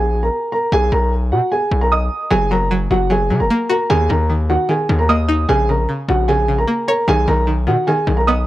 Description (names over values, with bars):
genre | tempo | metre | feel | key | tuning
hip hop, trap | 151 BPM | 4/4 | half-time | unclear | A4 = 439 Hz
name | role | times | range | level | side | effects
dark concert grand piano | melody | 0.0-8.5 s | F#4 to D#6 | -17 LUFS | right 1 dB | none
distorted 808-style bass | bass | 0.0-8.5 s | F#1 to C#3 | -18 LUFS | equal | distortion
string-like resonator pluck | accompaniment | 2.3-8.5 s | C#3 to C#5 | -20 LUFS | left 1 dB | chorus
room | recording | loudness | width
little or no reverb | dry, gritty hardware recording, transformer saturation | -14 LUFS | side -15 dB against mid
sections
0.0-8.5 A section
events
none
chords
0.0 F#add9/A# (rootless); 0.7 B; 2.3 F#add9; 3.9 D#m; 5.5 A#m; 7.1 B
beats
0.32 | 0.72 1.12 1.52 1.91 | 2.31 2.71 3.10 3.50 | 3.90 4.30 4.69 5.09 | 5.49 5.89 6.28 6.68 | 7.08 7.48 7.87 8.27